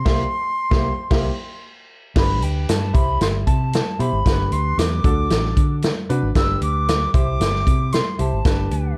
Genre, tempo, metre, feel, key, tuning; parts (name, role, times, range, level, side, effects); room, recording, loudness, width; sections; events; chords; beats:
uptempo 1960s-style soul; 114 BPM; 4/4; straight; G major; A4 = 440 Hz
silver concert flute; melody; 0.0-8.9 s; G5 to E6; -28 LUFS; equal; slapback echo
warm concert grand piano; accompaniment; 0.1-9.0 s; Bb3 to C5; -30 LUFS; equal
vintage muted fingered electric bass; bass; 0.1-8.9 s; G1 to D3; -24 LUFS; equal
swinging big-band drum kit; drums; 0.1-8.8 s; crash cymbal, hi-hat, kick drum, snare drum; -22 LUFS; equal
light reverb, small room reverb; dark, warm production; -20 LUFS; mono
0.0-2.2 A section; 2.2-9.0 B section
band accent 0.1-2.2
0.0 C7; 2.2 G; 2.9 C; 4.3 G; 5.0 D; 6.4 G; 7.1 C; 8.5 G
| 0.06 0.58 1.11 1.63 | 2.16 2.68 3.21 3.73 | 4.26 4.78 5.31 5.83 | 6.36 6.88 7.40 7.93 | 8.45 8.98